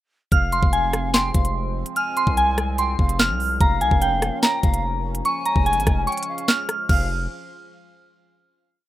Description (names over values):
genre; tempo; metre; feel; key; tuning
hip hop, drill; 146 BPM; 4/4; half-time; F minor; A4 = 441 Hz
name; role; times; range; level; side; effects
soft synth bell; melody; 0.3-7.1 s; G5 to F6; -22 LUFS; equal; chorus
breathy polished pan flute; second line; 0.3-7.1 s; F5 to Ab5; -32 LUFS; right 3 dB; digital delay
sweeping resonant pad; sustained chords; 0.3-7.1 s; F3 to C5; -33 LUFS; right 2 dB; chorus
distorted 808-style bass; bass; 0.3-7.3 s; F1 to C2; -25 LUFS; equal; distortion
drill drum kit; drums; 0.3-7.0 s; crash cymbal, handclaps, hi-hat, kick drum, rim click, snare drum; -20 LUFS; equal; none
room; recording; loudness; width
little or no reverb; rough home demo mix; -18 LUFS; side -14 dB against mid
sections
0.3-6.9 hook; 6.9-8.5 final chord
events
break 6.1-6.9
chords
0.3 Fm; 3.6 Bbm/F; 5.2 Db/F; 6.9 Fm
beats
| 0.32 0.73 1.14 1.55 | 1.96 2.37 2.78 3.19 | 3.61 4.02 4.43 4.84 | 5.25 5.66 6.07 6.48 | 6.89